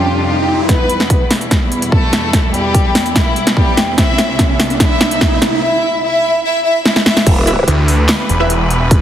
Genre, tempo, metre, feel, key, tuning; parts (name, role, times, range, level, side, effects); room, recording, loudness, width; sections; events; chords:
heavy wobble dubstep; 146 BPM; 4/4; half-time; E phrygian; A4 = 441 Hz
rich chamber violin section; melody; 0.0-7.2 s; G3 to E5; -17 LUFS; left 1 dB; dub echo
clear studio string section; sustained chords; 0.0-9.0 s; C2 to B4; -21 LUFS; equal; sidechain pumping, low-pass filter
riser; sound effects; 0.0-5.6 s; -21 LUFS; right 2 dB
big-room dance drum kit; drums; 0.7-9.0 s; crash cymbal, handclaps, hi-hat, snare drum; -15 LUFS; equal
electronic kick drum; drums; 0.7-9.0 s; -13 LUFS; equal
growl bass; bass; 7.3-7.7 s; E1; -13 LUFS; equal; chorus, overdrive
orchestra-hit-like synth stab; stabs; 7.5-8.5 s; E4 to E5; -20 LUFS; right 1 dB; built-in reverb, dub echo
snarling distorted saw bass; bass; 7.7-9.0 s; E1 to D2; -13 LUFS; equal; distortion, overdrive
moderate lush hall reverb, RT60 2.2 s; heavily compressed radio sound, multiband compression; -11 LUFS; side -10 dB against mid
0.7-7.3 A section; 7.3-9.0 B section
riser 0.0-0.7, 0.7-5.6; build-up 0.7-7.3; drum fill 0.7-5.6, 6.9-7.3; filter sweep on string section 0.7-7.3; drop 7.3-9.0
0.0 Fsus2; 0.7 Em; 4.0 Cmaj7; 7.3 Em